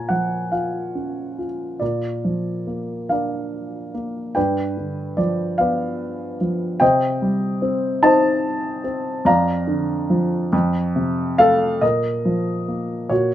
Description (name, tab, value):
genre	classical, lyrical solo piano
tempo	48 BPM (dotted quarters)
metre	6/8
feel	uneven beats, rubato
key	Bb major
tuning	A4 = 441 Hz
part	dark grand piano	solo	0.0-13.3 s	F2 to Bb5	-19 LUFS	equal	none
room	moderate small room reverb, RT60 0.5 s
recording	minimal, uncompressed stereo recording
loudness	-19 LUFS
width	side -12 dB against mid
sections	0.0-1.8 A section; 1.8-11.8 B section; 11.8-13.3 A section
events	none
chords	0.0 Bbm; 1.8 Bb; 4.4 G7; 6.8 Cm; 9.3 Bb/F; 10.5 F; 11.8 Bb5